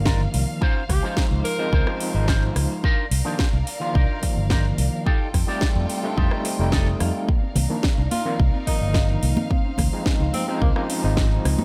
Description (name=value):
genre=nu-disco, nu disco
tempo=108 BPM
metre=4/4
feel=straight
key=C dorian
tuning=A4 = 440 Hz
part: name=overdriven tine electric piano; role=accompaniment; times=0.0-11.6 s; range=Eb3 to D5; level=-30 LUFS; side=equal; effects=medium tremolo, sidechain pumping, tape echo
part: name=warm studio violin section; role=sustained chords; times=0.0-11.6 s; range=Bb3 to G5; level=-36 LUFS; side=equal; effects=sidechain pumping
part: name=electric guitar with an envelope filter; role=riff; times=0.0-7.3 s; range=Db4 to F5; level=-33 LUFS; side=equal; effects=lush chorus, tape echo
part: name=fingered electric bass with an envelope filter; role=bass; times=0.0-11.5 s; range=F1 to F2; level=-25 LUFS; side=equal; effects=tube saturation
part: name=electronic kick drum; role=drums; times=0.1-11.3 s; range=none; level=-24 LUFS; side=equal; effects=none
part: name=house drum kit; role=drums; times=0.1-11.6 s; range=hi-hat, rim click, snare drum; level=-32 LUFS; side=equal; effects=none
part: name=warm tenor saxophone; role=melody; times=0.9-1.9, 8.1-10.8 s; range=Bb3 to Bb4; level=-33 LUFS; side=equal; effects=vintage 12-bit sampler grit, digital delay
part: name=soft round pluck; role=arpeggios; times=7.3-11.6 s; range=Bb3 to Eb4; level=-36 LUFS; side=equal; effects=none
part: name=congas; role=percussion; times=7.6-11.6 s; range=none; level=-30 LUFS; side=equal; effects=none
room=digital ambience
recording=none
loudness=-22 LUFS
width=mono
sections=0.0-11.6 A section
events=clean electric guitar fill 6.2-7.3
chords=0.0 Cm11; 0.6 Dbmaj9; 2.8 Cm11; 5.1 F9; 7.3 Cm11; 9.5 Dbmaj9